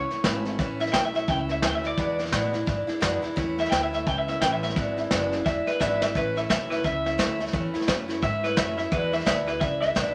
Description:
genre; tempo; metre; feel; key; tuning
rockabilly; 173 BPM; 4/4; swing 61% on 8ths; A major; A4 = 440 Hz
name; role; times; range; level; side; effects
electric guitar through a small old amp; melody; 0.0-10.1 s; B4 to G5; -29 LUFS; equal; warbly pitch drift
picked acoustic archtop guitar; accompaniment; 0.0-10.1 s; E2 to E4; -32 LUFS; equal; none
upright bass; bass; 0.0-10.1 s; E1 to A2; -36 LUFS; equal; none
vintage brush drum kit; drums; 0.1-10.1 s; hi-hat, kick drum, snare drum; -30 LUFS; equal; none
room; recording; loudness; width
wet studio reverb, RT60 0.6 s; none; -26 LUFS; mono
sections
0.6-10.1 A section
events
clean electric guitar solo 0.0-10.1; drum fill 5.8-6.1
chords
0.0 A; 2.0 E7; 3.4 A; 4.8 E7; 6.1 A; 8.9 E7

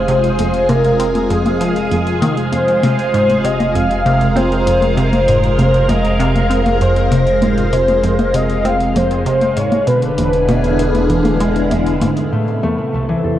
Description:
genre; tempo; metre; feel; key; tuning
ambient, sequencer-driven space music; 98 BPM; 4/4; straight; F minor; A4 = 442 Hz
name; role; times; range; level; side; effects
breathy flute-like synth lead; melody; 0.0-11.7 s; Ab4 to F5; -17 LUFS; left 1 dB; ensemble chorus, ping-pong delay
phased string machine; sustained chords; 0.0-13.4 s; C3 to Bb4; -19 LUFS; equal; ensemble chorus, phaser
round analog bass; bass; 0.0-13.4 s; E1 to A1; -21 LUFS; equal; tube saturation
bubbling stepped-filter texture; texture; 0.0-13.4 s; Ab4 to C6; -27 LUFS; equal; chorus, built-in reverb
tight sequenced synth; riff; 0.1-13.4 s; C2 to C4; -18 LUFS; equal; chorus, ping-pong delay
electronic hi-hat and congas; percussion; 0.1-12.3 s; none; -23 LUFS; left 1 dB; ping-pong delay
concert harp; arpeggios; 12.3-13.4 s; E3 to A4; -20 LUFS; left 2 dB; auto-pan, ping-pong delay
room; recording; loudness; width
wet plate reverb, RT60 3.0 s; worn, warbling old tape, cassette tape, warbly pitch drift; -12 LUFS; side -12 dB against mid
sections
0.0-12.3 A section; 12.3-13.4 B section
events
none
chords
0.0 Fm; 9.9 E7; 12.3 Amadd9

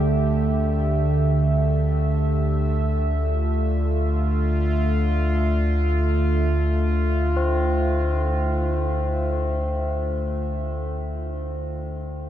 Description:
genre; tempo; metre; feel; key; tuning
dark ambient drone; free time; none; none; D minor; A4 = 439 Hz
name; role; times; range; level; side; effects
sweeping resonant pad; sustained chords; 0.0-12.3 s; D3 to E5; -25 LUFS; equal; chorus, shimmer reverb
tubular bells; arpeggios; 0.0-12.3 s; C4 to F4; -31 LUFS; left 2 dB; diffuse ambient delay, shimmer reverb
deep rumbling drone; drone; 0.0-12.3 s; D2 to D3; -22 LUFS; equal; built-in reverb, wide subtle chorus
room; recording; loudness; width
wet huge ambient reverb, RT60 7.4 s; dark, warm production; -20 LUFS; side -11 dB against mid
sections
0.0-12.3 A section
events
fade-out 8.5-12.3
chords
0.0 Dmadd9

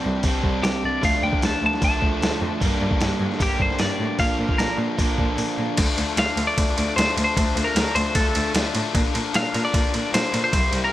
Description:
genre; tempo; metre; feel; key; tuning
indie rock; 152 BPM; 4/4; straight; D minor; A4 = 438 Hz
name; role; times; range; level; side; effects
crunchy overdriven guitar; riff; 0.0-5.8 s; F3 to D4; -28 LUFS; right 7 dB; wide subtle chorus
raw garage guitar; riff; 0.0-10.9 s; G2 to E4; -27 LUFS; left 6 dB; overdrive
clear cello; bass; 0.0-10.8 s; C2 to Bb2; -27 LUFS; equal; none
lo-fi sampler-style drum kit; drums; 0.2-10.8 s; crash cymbal, hi-hat, kick drum, ride cymbal, snare drum; -23 LUFS; equal; overdrive
twelve-string electric guitar; melody; 0.6-10.9 s; G4 to A5; -24 LUFS; left 1 dB; none
room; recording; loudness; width
digital ambience; none; -19 LUFS; side -14 dB against mid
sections
0.0-5.8 A section; 5.8-10.9 B section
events
clean electric guitar solo 0.0-5.8; break 5.4-5.8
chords
0.0 Csus2; 1.0 Dm; 2.6 Gm; 4.2 Bb; 5.8 Dm7; 8.9 Bb

